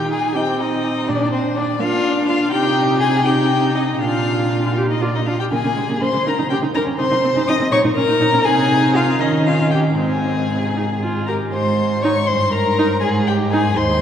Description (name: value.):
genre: quick classical-period movement for string quartet.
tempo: 81 BPM (dotted quarters).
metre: 6/8.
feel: rubato.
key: Ab major from 5.5 s.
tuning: A4 = 440 Hz.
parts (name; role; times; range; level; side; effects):
rich violin; melody; 0.0-14.0 s; C5 to Eb6; -22 LUFS; left 5 dB; none.
warm violin; second line; 0.0-14.0 s; C4 to Eb5; -21 LUFS; left 1 dB; none.
warm viola; accompaniment; 0.0-13.6 s; Ab3 to G4; -22 LUFS; right 2 dB; none.
dark cello; bass; 0.0-14.0 s; Eb2 to Eb4; -21 LUFS; right 1 dB; none.
room: wet cathedral reverb, RT60 6.4 s.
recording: recorded in a church or concert hall.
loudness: -15 LUFS.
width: side -9 dB against mid.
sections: 0.0-11.5 A section; 11.5-14.0 B section.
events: none.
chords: 0.0 Eb; 1.1 Bb; 2.5 Cm; 4.0 Bb; 5.5 Bbm7/Db; 6.3 Eb7/Db; 7.0 Cm; 7.7 Eb5/Bb; 8.4 Ab/C; 9.2 Eb9; 10.0 Ab; 12.3 Eb/G; 13.0 Ab.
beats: 0.36 | 1.09 1.81 | 2.52 3.26 | 4.01 4.77 | 5.52 6.26 | 7.00 7.72 | 8.45 9.20 | 9.97 10.76 | 11.54 12.29 | 13.03 13.76.